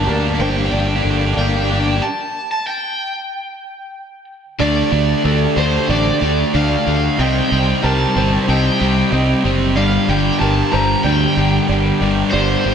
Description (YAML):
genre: rock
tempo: 93 BPM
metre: 4/4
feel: straight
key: G minor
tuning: A4 = 440 Hz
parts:
  - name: cranked stack guitar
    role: melody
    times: 0.0-12.7 s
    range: C5 to Bb5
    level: -21 LUFS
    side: equal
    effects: overdrive, spring reverb, slapback echo
  - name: muted studio string section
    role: sustained chords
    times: 0.0-12.7 s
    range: D3 to G5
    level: -30 LUFS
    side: equal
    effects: none
  - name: felt-muted upright piano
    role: arpeggios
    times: 0.0-12.7 s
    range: A4 to Eb5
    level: -27 LUFS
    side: right 2 dB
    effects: slapback echo
  - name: twangy electric guitar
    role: arpeggios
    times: 0.0-2.0 s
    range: G2 to D4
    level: -27 LUFS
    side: left 2 dB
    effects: slapback echo
  - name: overdriven electric guitar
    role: riff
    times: 0.0-12.7 s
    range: G2 to D4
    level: -20 LUFS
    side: left 10 dB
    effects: spring reverb, slapback echo
  - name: thick fuzz guitar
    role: riff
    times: 0.0-12.7 s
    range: G2 to G4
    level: -20 LUFS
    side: right 9 dB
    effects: distortion
  - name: overdriven fingered electric bass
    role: bass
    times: 0.0-12.7 s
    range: F#1 to D2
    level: -19 LUFS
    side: right 1 dB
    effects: none
room: moderate lush hall reverb, RT60 1.9 s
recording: big arena sound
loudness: -14 LUFS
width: side -7 dB against mid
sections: 0.0-4.6 A section; 4.6-12.7 B section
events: build-up 0.0-4.6; stop 2.0-4.6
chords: 0.0 Gm; 4.6 Dsus4; 7.2 Cm; 9.8 Gm